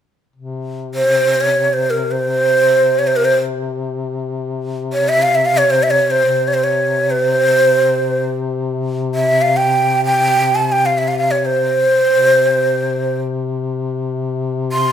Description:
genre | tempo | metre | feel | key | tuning
turkish | free time | none | none | C makam hicaz | A4 = 439 Hz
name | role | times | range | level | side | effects
mellow duduk | drone | 0.4-14.9 s | C3 | -21 LUFS | left 4 dB | none
breathy ney | melody | 0.9-14.9 s | Bb4 to C6 | -13 LUFS | right 1 dB | none
room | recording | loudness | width
moderate recital hall reverb, RT60 1.3 s | minimal, uncompressed stereo recording | -13 LUFS | side -9 dB against mid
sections
0.4-14.9 A section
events
none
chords
none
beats
free time

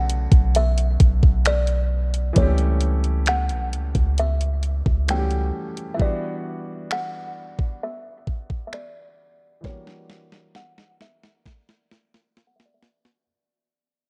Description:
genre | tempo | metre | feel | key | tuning
contemporary R&B | 66 BPM | 4/4 | straight | unclear | A4 = 440 Hz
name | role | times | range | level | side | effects
buzzing kalimba | melody | 0.0-12.8 s | C#5 to G5 | -30 LUFS | equal | low-pass filter, tape echo
clear grand piano | accompaniment | 0.0-13.3 s | C#3 to G4 | -34 LUFS | equal | low-pass filter
warm 808-style bass | bass | 0.0-5.5 s | B1 to C#2 | -23 LUFS | equal | none
crisp 8-bit digital drum machine | drums | 0.1-13.3 s | finger snaps, hi-hat, kick drum, snare drum | -22 LUFS | equal | none
room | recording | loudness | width
little or no reverb | worn, warbling old tape, cassette tape, warbly pitch drift | -22 LUFS | mono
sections
0.0-13.3 A section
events
fade-out 0.0-13.3; filter sweep 0.0-13.3; drum fill 9.6-13.3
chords
0.0 Bm9; 2.4 A7; 6.0 Em9; 9.6 F#7b9b13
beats
0.55 1.45 | 2.36 3.27 4.18 5.09 | 6.00 6.91 7.82 8.73 | 9.64 10.54 11.45 12.36

